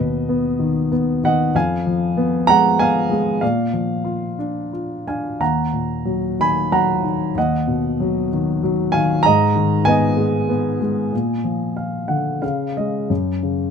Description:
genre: classical, lyrical solo piano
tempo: 87-99 BPM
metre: 3/4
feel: rubato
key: unclear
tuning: A4 = 440 Hz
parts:
  - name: warm grand piano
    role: solo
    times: 0.0-13.7 s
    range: D#2 to Cb6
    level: -17 LUFS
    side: equal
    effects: none
room: light reverb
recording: close, detailed microphones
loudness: -17 LUFS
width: side -6 dB against mid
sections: 0.0-13.1 A section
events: grand piano fill 11.8-13.1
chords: 0.0 B/D#; 1.5 Fdim; 3.4 Bb; 5.4 Ebm; 7.4 B/D#; 9.2 Abm; 11.1 Bb; 12.4 Db; 13.1 F#5

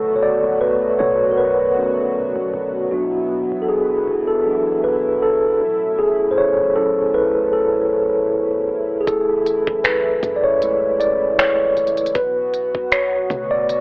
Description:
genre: contemporary R&B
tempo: 78 BPM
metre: 4/4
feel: swing 54% on 16ths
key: unclear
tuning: A4 = 440 Hz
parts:
  - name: mellow tine electric piano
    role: accompaniment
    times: 0.0-13.8 s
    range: C#3 to D5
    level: -16 LUFS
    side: equal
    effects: medium stereo tremolo
  - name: chorused pulse-width pad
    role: sustained chords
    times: 0.0-13.8 s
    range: B2 to F#4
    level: -26 LUFS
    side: equal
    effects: none
  - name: warm 808-style bass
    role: bass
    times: 0.0-13.8 s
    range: D1 to B2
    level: -35 LUFS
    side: equal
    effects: none
  - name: smooth R&B drum kit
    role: drums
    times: 9.1-13.8 s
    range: finger snaps, hi-hat, kick drum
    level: -20 LUFS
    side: equal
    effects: cassette tape
room: moderate spring reverb, RT60 1.8 s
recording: home recording on cassette, telephone sound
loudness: -15 LUFS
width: side -29 dB against mid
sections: 0.0-13.8 A section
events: tine electric piano solo 0.0-13.8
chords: 0.0 Bm7; 2.9 E9; 5.6 Dmaj9; 9.1 F#m9; 12.2 Bm7

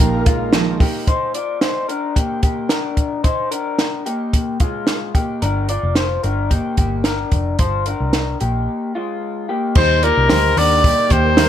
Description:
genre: jangly indie pop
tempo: 111 BPM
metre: 4/4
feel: straight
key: Eb major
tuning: A4 = 440 Hz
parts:
  - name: clear trumpet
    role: melody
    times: 0.0-0.5, 9.8-11.5 s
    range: Bb4 to D5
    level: -16 LUFS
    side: left 2 dB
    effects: none
  - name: fingerpicked steel-string acoustic guitar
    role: accompaniment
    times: 0.0-1.1, 9.8-11.5 s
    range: Eb3 to Bb4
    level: -22 LUFS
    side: right 9 dB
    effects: none
  - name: string machine, cellos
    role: sustained chords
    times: 0.0-1.1, 9.7-11.5 s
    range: Bb4 to Bb5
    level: -30 LUFS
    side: right 2 dB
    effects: none
  - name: electric guitar through a small old amp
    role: arpeggios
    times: 0.0-11.5 s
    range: Ab3 to D5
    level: -21 LUFS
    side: left 3 dB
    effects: analog chorus, tape echo
  - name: vintage muted picked electric bass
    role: bass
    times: 0.0-0.8, 5.4-11.5 s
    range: F1 to Eb2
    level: -20 LUFS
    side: equal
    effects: none
  - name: compact cocktail drum kit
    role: drums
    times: 0.0-11.5 s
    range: crash cymbal, hi-hat, kick drum, snare drum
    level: -17 LUFS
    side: right 1 dB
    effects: none
room: light reverb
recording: none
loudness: -16 LUFS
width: side -10 dB against mid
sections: 0.0-1.1 A section; 1.1-9.8 B section; 9.8-11.5 A section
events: break 8.7-9.8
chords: 0.0 Ebsus2; 1.1 Ebmaj7; 5.1 Gm7; 9.8 Eb

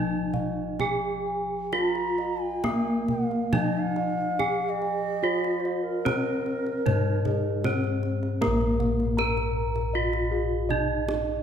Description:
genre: Javanese gamelan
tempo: 65-79 BPM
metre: 4/4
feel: straight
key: Bb slendro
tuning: A4 = 441 Hz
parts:
  - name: gamelan-type bronze metallophone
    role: melody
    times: 0.0-11.4 s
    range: Bb3 to Bb4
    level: -28 LUFS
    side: right 1 dB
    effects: none
  - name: gamelan-type bossed gongs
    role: arpeggios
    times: 0.0-11.1 s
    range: Ab4-45c to Bb5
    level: -34 LUFS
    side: left 3 dB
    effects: none
  - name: gamelan-type bronze metallophone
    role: arpeggios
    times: 0.0-11.4 s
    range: Bb4 to Bb5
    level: -35 LUFS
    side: right 4 dB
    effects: none
  - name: gamelan-type bossed gongs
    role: bass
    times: 0.0-11.4 s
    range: Bb1 to Bb4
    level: -30 LUFS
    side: left 2 dB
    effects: none
  - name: kendang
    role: percussion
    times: 0.3-11.3 s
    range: none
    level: -34 LUFS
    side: right 2 dB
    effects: none
  - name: mellow hollow bansuri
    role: second line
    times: 1.8-7.8 s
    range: Bb4 to Bb5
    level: -31 LUFS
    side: right 2 dB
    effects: none
room: moderate scoring stage reverb, RT60 2.0 s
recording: none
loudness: -24 LUFS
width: side -8 dB against mid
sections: 0.0-8.4 A section; 8.4-11.4 B section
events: none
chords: none

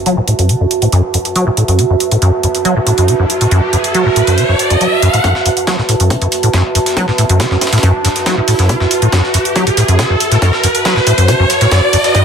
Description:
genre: driving peak-time techno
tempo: 139 BPM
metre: 4/4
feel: straight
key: F# minor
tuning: A4 = 439 Hz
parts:
  - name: impact and riser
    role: sound effects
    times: 0.0-12.2 s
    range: none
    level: -17 LUFS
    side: left 1 dB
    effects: none
  - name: warbly tape-like pad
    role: texture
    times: 0.0-12.2 s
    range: F#4 to A5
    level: -17 LUFS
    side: right 4 dB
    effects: chorus, built-in reverb, sidechain pumping
  - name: acid bass, saw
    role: riff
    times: 0.1-12.2 s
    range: F#2 to F#3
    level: -13 LUFS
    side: equal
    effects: ensemble chorus, sidechain pumping, ping-pong delay
  - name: electronic hi-hat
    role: drums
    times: 0.1-12.2 s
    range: none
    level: -18 LUFS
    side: right 2 dB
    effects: sidechain pumping on hats, sidechain pumping on cymbals
  - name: breakbeat sampler-style drum kit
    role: drums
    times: 5.2-12.2 s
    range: hi-hat, snare drum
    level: -21 LUFS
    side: equal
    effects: high-pass filter on hats, high-pass filter on snare, high-pass filter on room
  - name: electronic kick drum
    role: drums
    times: 5.2-12.2 s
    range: none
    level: -21 LUFS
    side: equal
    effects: high-pass filter on kick, high-pass filter on room
room: moderate stone room reverb, RT60 1.1 s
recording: none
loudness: -10 LUFS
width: side -7 dB against mid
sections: 0.0-5.2 A section; 5.2-12.2 B section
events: filter sweep on acid bass 0.0-5.2; riser 2.7-5.2, 5.2-12.2; build-up 5.2-12.2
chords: 0.0 F#m

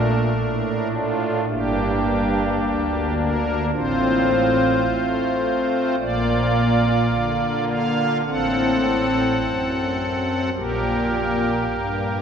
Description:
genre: classical, chorale-style piece for pipe organ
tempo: 53 BPM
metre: 4/4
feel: straight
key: G minor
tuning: A4 = 439 Hz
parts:
  - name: pipe organ, strings celeste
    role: solo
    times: 0.0-12.2 s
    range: G1 to F#5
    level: -19 LUFS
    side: equal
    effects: none
room: wet church reverb, RT60 3.4 s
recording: recorded in a church or concert hall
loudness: -19 LUFS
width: side -7 dB against mid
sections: 0.0-12.2 A section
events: none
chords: 0.0 Bbmaj7; 1.5 Gm; 3.7 F/A; 6.0 Bb; 8.3 Am6; 10.5 Gm/Bb

